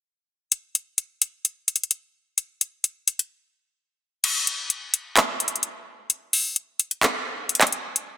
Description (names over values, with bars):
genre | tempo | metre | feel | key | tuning
hip hop | 129 BPM | 4/4 | half-time | none | none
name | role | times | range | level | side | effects
trap drum kit | drums | 0.5-8.1 s | crash cymbal, handclaps, hi-hat | -20 LUFS | left 1 dB | none
room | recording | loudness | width
moderate lush hall reverb, RT60 1.7 s | dense, heavily limited modern master | -22 LUFS | side -12 dB against mid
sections
0.5-4.2 A section; 4.2-8.2 B section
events
break 3.3-4.2; kick muted 4.2-8.2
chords
none